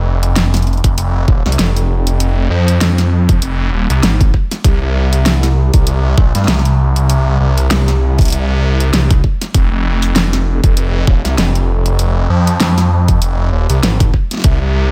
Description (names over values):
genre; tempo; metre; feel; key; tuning
glitch hop; 98 BPM; 4/4; swing 57% on 16ths; unclear; A4 = 443 Hz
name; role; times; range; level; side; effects
phased detuned saw bass; bass; 0.0-14.9 s; Eb1 to G2; -15 LUFS; equal; phaser, tube saturation
pop drum kit; drums; 0.2-14.6 s; hi-hat, snare drum; -20 LUFS; equal; overdrive
electronic kick drum; drums; 0.8-14.6 s; none; -14 LUFS; equal; overdrive
room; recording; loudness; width
little or no reverb; none; -13 LUFS; mono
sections
0.0-14.9 A section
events
none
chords
none